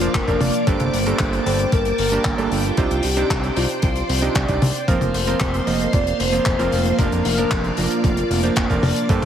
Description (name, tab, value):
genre	italo disco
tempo	114 BPM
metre	4/4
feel	straight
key	unclear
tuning	A4 = 438 Hz
part	soft octave-layered synth lead	melody	0.0-9.2 s	F4 to Eb5	-24 LUFS	left 2 dB	chorus, phaser, ping-pong delay
part	string machine, full ensemble	sustained chords	0.0-9.2 s	Bb3 to D6	-25 LUFS	equal	ensemble chorus
part	bright electric grand piano	stabs	0.0-9.2 s	G2 to Eb5	-25 LUFS	right 6 dB	none
part	fat analog bass	bass	0.0-9.2 s	F1 to C2	-23 LUFS	equal	none
part	damped 70s drum kit	drums	0.0-9.2 s	handclaps, hi-hat, toms	-25 LUFS	left 2 dB	small room ambience
part	electronic kick drum	drums	0.1-9.2 s	none	-22 LUFS	equal	overdrive, small room ambience
room	light reverb, studio reverb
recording	heavily compressed radio sound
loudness	-17 LUFS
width	side -9 dB against mid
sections	0.0-9.2 A section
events	none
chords	0.0 Bb/F; 0.7 Gmadd9; 2.8 Cmadd9; 4.9 Fsus4; 7.0 Bb/F